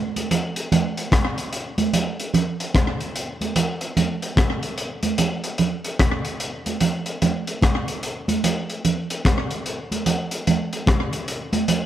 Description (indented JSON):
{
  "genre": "reggae",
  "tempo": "74 BPM",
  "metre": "4/4",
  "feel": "swing 62% on 16ths",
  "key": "none",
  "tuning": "none",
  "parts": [
    { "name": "crunchy breakbeat drum kit", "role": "drums", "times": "0.2-11.9 s", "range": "hi-hat, kick drum, rim click", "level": "-22 LUFS", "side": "left 1 dB", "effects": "slapback echo" },
    { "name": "congas", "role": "percussion", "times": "0.2-11.9 s", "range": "none", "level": "-23 LUFS", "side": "right 4 dB", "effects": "none" }
  ],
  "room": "little or no reverb",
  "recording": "none",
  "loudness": "-20 LUFS",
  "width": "side -11 dB against mid",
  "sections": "0.0-11.9 A section",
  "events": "none",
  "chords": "none"
}